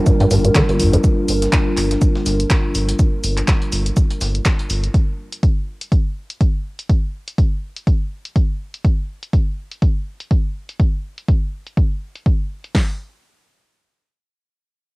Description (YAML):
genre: acid house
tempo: 123 BPM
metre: 4/4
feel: swing 56% on 16ths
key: G minor pentatonic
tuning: A4 = 441 Hz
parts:
  - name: dark analog pad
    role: sustained chords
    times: 0.0-4.9 s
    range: G3 to Bb4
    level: -21 LUFS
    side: equal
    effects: chorus, sidechain pumping, cassette tape
  - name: acid bass, square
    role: riff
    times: 0.1-1.0 s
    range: G1 to D3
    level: -16 LUFS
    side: equal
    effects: tube saturation, vintage 12-bit sampler grit, cassette tape, tape echo
  - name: breakbeat sampler-style drum kit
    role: drums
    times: 0.1-4.8 s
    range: hi-hat, shaker, snare drum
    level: -32 LUFS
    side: right 1 dB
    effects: high-pass filter on snare, cassette tape, sidechain pumping on perc, high-pass filter on perc, sidechain pumping on hats, high-pass filter on hats
  - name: punchy analog drum machine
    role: drums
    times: 0.1-12.9 s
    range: hi-hat, kick drum, snare drum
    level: -16 LUFS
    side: equal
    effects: overdrive, cassette tape
  - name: punchy analog drum machine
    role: drums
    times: 0.1-12.7 s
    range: handclaps, hi-hat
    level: -25 LUFS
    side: equal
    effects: overdrive, low-pass filter on hats, cassette tape, low-pass filter on perc, low-pass filter on snare
  - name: saturated sub bass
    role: bass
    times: 0.3-4.9 s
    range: G1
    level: -20 LUFS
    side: equal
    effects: tube saturation, sidechain pumping
room: little or no reverb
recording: home recording on cassette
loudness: -16 LUFS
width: side -24 dB against mid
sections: 0.0-12.7 A section; 12.7-15.0 B section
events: filter sweep on acid bass 0.0-1.0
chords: 0.0 Gm7; 12.7 N.C.